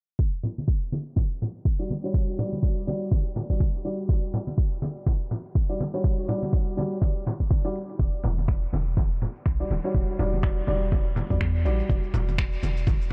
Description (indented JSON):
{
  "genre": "afro house",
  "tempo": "123 BPM",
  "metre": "4/4",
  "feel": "swing 57% on 16ths",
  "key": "E dorian",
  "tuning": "A4 = 441 Hz",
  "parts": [
    { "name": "electronic kick drum", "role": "drums", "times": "0.2-13.0 s", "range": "none", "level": "-26 LUFS", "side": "equal", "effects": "none" },
    { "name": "electronic shaker and finger snaps", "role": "drums", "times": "0.2-13.1 s", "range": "none", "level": "-42 LUFS", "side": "equal", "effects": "overdrive" },
    { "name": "congas", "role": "percussion", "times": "0.4-13.1 s", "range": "none", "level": "-33 LUFS", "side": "equal", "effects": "none" },
    { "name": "felt-muted upright piano", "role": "stabs", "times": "1.8-13.1 s", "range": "G3 to D5", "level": "-34 LUFS", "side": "equal", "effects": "sidechain pumping, low-pass filter, diffuse ambient delay" },
    { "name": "warm 808-style bass", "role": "bass", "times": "8.0-13.1 s", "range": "D1 to E2", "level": "-29 LUFS", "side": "equal", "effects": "sidechain pumping" }
  ],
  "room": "little or no reverb",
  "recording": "low-pass filter",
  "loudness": "-26 LUFS",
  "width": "mono",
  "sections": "0.2-13.1 A section",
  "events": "filter sweep on felt piano 0.2-13.1; filter sweep 0.2-13.1",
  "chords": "0.2 Em9"
}